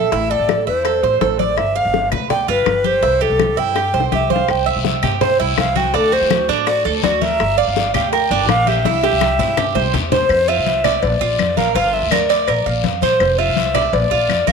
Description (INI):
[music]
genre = latin, Cuban son and guajira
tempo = 165 BPM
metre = 4/4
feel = straight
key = unclear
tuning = A4 = 440 Hz
[part]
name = breathy bright alto ocarina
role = melody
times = 0.0-14.5 s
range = A4 to G5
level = -18 LUFS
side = left 1 dB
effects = none
[part]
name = Cuban tres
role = arpeggios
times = 0.0-14.5 s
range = D4 to F5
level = -19 LUFS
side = right 12 dB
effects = none
[part]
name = upright bass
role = bass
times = 0.0-14.5 s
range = F1 to G2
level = -23 LUFS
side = left 1 dB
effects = none
[part]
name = bongos and cowbell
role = percussion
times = 0.1-14.5 s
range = none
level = -25 LUFS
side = left 14 dB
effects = none
[part]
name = congas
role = percussion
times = 0.1-14.5 s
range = none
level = -25 LUFS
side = left 12 dB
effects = none
[part]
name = claves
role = percussion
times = 0.5-14.5 s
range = none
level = -28 LUFS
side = left 16 dB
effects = none
[part]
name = guiro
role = percussion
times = 4.5-14.5 s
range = none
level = -28 LUFS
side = left 15 dB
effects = none
[sound]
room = moderate plate reverb, RT60 2.7 s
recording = 1960s-style stereo with parts hard left and right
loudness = -14 LUFS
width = side -5 dB against mid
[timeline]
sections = 0.0-10.3 A section; 10.3-14.5 B section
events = drum fill 3.8-4.5, 8.8-10.3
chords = 0.1 Am; 1.6 G7; 3.0 C; 5.9 D; 7.4 Gm; 8.8 C; 10.3 F5; 11.0 Bb; 11.8 Gm7; 12.5 Bb; 13.2 F5; 13.9 Bb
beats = | 0.12 0.49 0.85 1.21 | 1.58 1.94 2.31 2.67 | 3.03 3.40 3.76 4.12 | 4.49 4.85 5.21 5.58 | 5.94 6.31 6.67 7.03 | 7.40 7.76 8.12 8.49 | 8.85 9.21 9.58 9.94 | 10.30 10.66 11.03 11.39 | 11.75 12.12 12.48 12.84 | 13.21 13.57 13.93 14.29